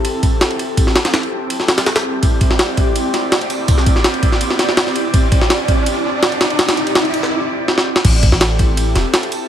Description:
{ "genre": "drum and bass, jungle", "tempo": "165 BPM", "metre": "4/4", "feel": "straight", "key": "A minor", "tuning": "A4 = 441 Hz", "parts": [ { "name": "airy breathy pad", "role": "sustained chords", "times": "0.0-9.5 s", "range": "C4 to D5", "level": "-20 LUFS", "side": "right 1 dB", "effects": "chorus, phaser" }, { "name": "jungle sampler-style drum kit", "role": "drums", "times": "0.0-9.4 s", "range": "crash cymbal, kick drum, ride cymbal, snare drum", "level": "-14 LUFS", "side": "equal", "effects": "none" }, { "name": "riser", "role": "sound effects", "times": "0.1-7.3 s", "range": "none", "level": "-24 LUFS", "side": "left 1 dB", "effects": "none" }, { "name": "warm 808-style bass", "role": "bass", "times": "8.0-9.0 s", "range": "E1 to A1", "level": "-16 LUFS", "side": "equal", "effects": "none" } ], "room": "light reverb", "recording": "vinyl crackle", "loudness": "-13 LUFS", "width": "side -10 dB against mid", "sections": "0.0-8.0 A section; 8.0-9.5 B section", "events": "build-up 0.0-8.0; riser 0.1-7.3; drum fill 7.7-8.0; drop 8.0-9.5", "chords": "0.0 Am7" }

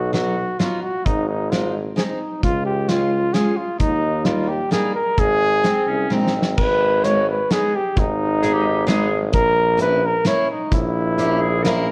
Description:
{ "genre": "alpine folk, alpine dance band", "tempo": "131 BPM", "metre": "3/4", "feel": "straight", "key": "Ab major, G# harmonic minor from 6.6 s", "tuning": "A4 = 440 Hz", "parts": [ { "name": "dark trumpet", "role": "melody", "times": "0.0-11.8 s", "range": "Eb4 to C#5", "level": "-23 LUFS", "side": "equal", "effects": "none" }, { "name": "clear tuba", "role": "bass", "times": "0.0-11.9 s", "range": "Ab1 to Eb2", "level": "-26 LUFS", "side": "equal", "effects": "transformer saturation" }, { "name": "picked steel-string acoustic guitar", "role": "accompaniment", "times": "0.1-11.9 s", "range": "F#3 to F4", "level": "-28 LUFS", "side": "equal", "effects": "none" }, { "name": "loose indie drum kit", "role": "drums", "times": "0.1-11.8 s", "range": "crash cymbal, hi-hat, kick drum, snare drum", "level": "-25 LUFS", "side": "equal", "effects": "none" }, { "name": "bright clarinet", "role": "second line", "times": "5.6-11.9 s", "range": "C4 to A#4", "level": "-28 LUFS", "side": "equal", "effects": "none" } ], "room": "moderate recital hall reverb, RT60 1.7 s", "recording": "worn, warbling old tape, cassette tape, warbly pitch drift", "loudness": "-19 LUFS", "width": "mono", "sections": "0.0-6.6 A section; 6.6-11.9 B section", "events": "drum fill 6.1-6.6", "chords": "0.0 B; 1.1 Ab; 2.4 Db; 3.8 Eb; 5.2 Ab; 6.6 G#m; 9.3 A#dim" }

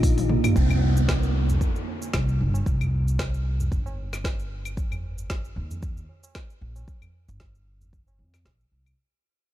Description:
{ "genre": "organic downtempo", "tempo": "114 BPM", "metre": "4/4", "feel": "swing 55% on 16ths", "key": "C minor", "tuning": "A4 = 440 Hz", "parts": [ { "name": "warm analog pad", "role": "sustained chords", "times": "0.0-0.6 s", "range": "D3 to F5", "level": "-41 LUFS", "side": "equal", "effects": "none" }, { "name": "upright bass", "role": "bass", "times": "0.0-8.9 s", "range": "G1 to F2", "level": "-25 LUFS", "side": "equal", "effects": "sidechain pumping" }, { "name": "deep house drum kit", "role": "drums", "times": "0.0-9.0 s", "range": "cabasa, claves, hi-hat, snare drum, toms", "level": "-31 LUFS", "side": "equal", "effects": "studio reverb" }, { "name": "electronic kick drum", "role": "drums", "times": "0.0-8.6 s", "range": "none", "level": "-26 LUFS", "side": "equal", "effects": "studio reverb" }, { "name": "tabla", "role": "percussion", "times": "0.6-8.3 s", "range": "none", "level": "-35 LUFS", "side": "right 1 dB", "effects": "none" }, { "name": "downlifter", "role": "sound effects", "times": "0.6-4.8 s", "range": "none", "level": "-35 LUFS", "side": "right 4 dB", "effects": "none" } ], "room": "little or no reverb", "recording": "dark, warm production", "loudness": "-22 LUFS", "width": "side -13 dB against mid", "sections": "0.6-9.0 A section", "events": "drum fill 0.2-0.6; fade-out 0.6-9.0; filter sweep on upright bass 0.6-9.0", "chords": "0.0 Ebmaj9 (rootless); 0.6 C5" }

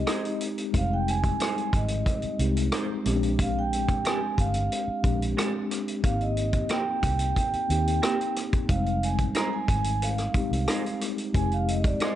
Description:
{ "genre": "lush 1970s-style soul", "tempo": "91 BPM", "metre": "4/4", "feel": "straight", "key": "F dorian", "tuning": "A4 = 442 Hz", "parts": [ { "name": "vibraphone with soft mallets", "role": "melody", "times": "0.0-12.2 s", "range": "D5 to Bb5", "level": "-30 LUFS", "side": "right 4 dB", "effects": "none" }, { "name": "mellow tine electric piano", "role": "accompaniment", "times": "0.0-12.2 s", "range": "G3 to G4", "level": "-30 LUFS", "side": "left 3 dB", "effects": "medium stereo tremolo" }, { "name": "vintage muted fingered electric bass", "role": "bass", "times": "0.0-11.9 s", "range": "F1 to Eb2", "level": "-28 LUFS", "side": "equal", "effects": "none" }, { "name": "electric guitar through a small old amp", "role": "riff", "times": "0.1-12.1 s", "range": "Ab3 to C5", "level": "-34 LUFS", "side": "right 5 dB", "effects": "spring reverb" }, { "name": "vintage drum kit", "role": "drums", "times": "0.1-12.2 s", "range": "hi-hat, kick drum, rim click", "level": "-29 LUFS", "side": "equal", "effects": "none" } ], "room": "studio ambience", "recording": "nothing above 10.4 kHz", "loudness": "-24 LUFS", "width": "side -12 dB against mid", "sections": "0.0-12.2 A section", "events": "none", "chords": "0.0 Fm7; 3.1 Bb13; 6.0 Abmaj9; 8.7 Fm7" }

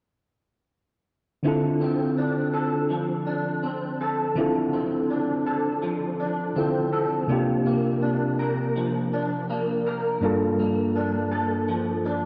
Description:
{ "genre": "indie pop, bedroom pop", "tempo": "82 BPM", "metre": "4/4", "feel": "straight", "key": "D minor", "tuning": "A4 = 439 Hz", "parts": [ { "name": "electric guitar through a small old amp", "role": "accompaniment", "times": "1.4-12.3 s", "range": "G2 to Bb4", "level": "-28 LUFS", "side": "equal", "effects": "ensemble chorus, vibrato effect" }, { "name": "reed electric piano", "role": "accompaniment", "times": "1.4-12.3 s", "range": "G2 to A4", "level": "-28 LUFS", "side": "equal", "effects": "none" } ], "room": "wet lush hall reverb, RT60 2.5 s", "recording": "dreamy mix soaked in reverb", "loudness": "-25 LUFS", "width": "mono", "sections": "1.4-12.3 A section", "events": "none", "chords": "1.4 Dm7; 7.3 C9sus4; 10.2 Gm9" }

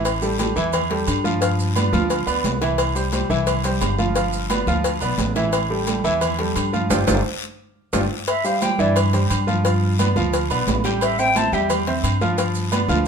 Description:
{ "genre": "latin, salsa", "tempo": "175 BPM", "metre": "4/4", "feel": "straight", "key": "C major", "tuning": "A4 = 439 Hz", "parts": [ { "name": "clear concert grand piano", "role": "accompaniment", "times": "0.0-13.1 s", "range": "E3 to G5", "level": "-23 LUFS", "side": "right 1 dB", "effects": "none" }, { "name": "upright bass", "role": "bass", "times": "0.0-13.1 s", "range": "G1 to G2", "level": "-23 LUFS", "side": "equal", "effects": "none" }, { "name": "agogo bells and timbales", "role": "percussion", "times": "0.1-12.9 s", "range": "none", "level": "-28 LUFS", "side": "right 6 dB", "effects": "none" }, { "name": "congas", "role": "percussion", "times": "0.1-13.1 s", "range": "none", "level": "-28 LUFS", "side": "right 2 dB", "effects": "none" }, { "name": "cowbell", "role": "percussion", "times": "0.1-12.9 s", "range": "none", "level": "-27 LUFS", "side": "left 5 dB", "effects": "none" }, { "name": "guiro", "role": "percussion", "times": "0.1-13.1 s", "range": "none", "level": "-34 LUFS", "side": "left 7 dB", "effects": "none" }, { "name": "maracas", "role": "percussion", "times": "0.1-13.1 s", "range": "none", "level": "-34 LUFS", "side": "right 6 dB", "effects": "none" }, { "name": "mellow silver concert flute", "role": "melody", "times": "8.3-9.0, 11.0-11.7 s", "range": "D5 to A5", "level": "-21 LUFS", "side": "left 1 dB", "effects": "none" } ], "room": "moderate studio reverb, RT60 0.7 s", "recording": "minimal, uncompressed stereo recording", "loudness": "-18 LUFS", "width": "side -6 dB against mid", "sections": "0.0-8.3 A section; 8.3-13.1 B section", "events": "drum fill 6.9-8.3; band accent 6.9-8.3; flute solo 8.3-13.1", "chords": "0.1 A5; 1.4 G7; 2.8 C; 4.2 G7; 5.5 A5; 6.9 G5; 8.3 C; 9.7 G7; 11.0 Am7; 12.4 G7" }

